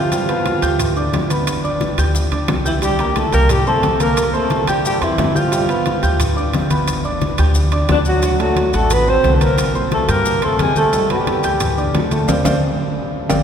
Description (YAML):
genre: Afro-Cuban jazz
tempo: 178 BPM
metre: 4/4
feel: straight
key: unclear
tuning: A4 = 440 Hz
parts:
  - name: breathy alto saxophone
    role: melody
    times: 0.0-12.1 s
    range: D4 to C5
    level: -20 LUFS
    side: left 1 dB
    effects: none
  - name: clear trombone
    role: second line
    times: 0.0-12.1 s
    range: D3 to C4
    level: -26 LUFS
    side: right 4 dB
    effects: none
  - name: warm concert grand piano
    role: accompaniment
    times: 0.0-13.4 s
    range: F#3 to G6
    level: -22 LUFS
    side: right 1 dB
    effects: none
  - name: upright bass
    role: bass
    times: 0.0-13.4 s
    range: G1 to G2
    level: -20 LUFS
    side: equal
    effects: none
  - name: bongos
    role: percussion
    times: 0.1-13.4 s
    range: none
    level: -27 LUFS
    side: left 4 dB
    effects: none
  - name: congas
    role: percussion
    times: 0.1-13.4 s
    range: none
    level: -23 LUFS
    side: left 1 dB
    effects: none
  - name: maracas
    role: percussion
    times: 0.1-13.4 s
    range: none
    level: -31 LUFS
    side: left 4 dB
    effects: none
  - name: timbales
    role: percussion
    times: 0.1-13.4 s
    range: none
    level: -26 LUFS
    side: right 4 dB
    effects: none
room: wet cathedral reverb, RT60 6.1 s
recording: recorded in a church or concert hall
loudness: -14 LUFS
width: side -8 dB against mid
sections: 0.0-13.4 A section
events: band accent 12.3-13.4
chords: 0.1 G7; 2.8 C6; 5.5 G7; 8.2 D7; 9.6 C5; 10.9 Gadd9; 12.3 Dm7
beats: | 0.12 0.46 0.79 1.13 | 1.47 1.81 2.14 2.48 | 2.82 3.16 3.50 3.83 | 4.17 4.51 4.85 5.18 | 5.52 5.86 6.20 6.54 | 6.88 7.21 7.55 7.89 | 8.23 8.57 8.90 9.24 | 9.58 9.92 10.26 10.59 | 10.93 11.27 11.61 11.95 | 12.28 12.62 12.96 13.30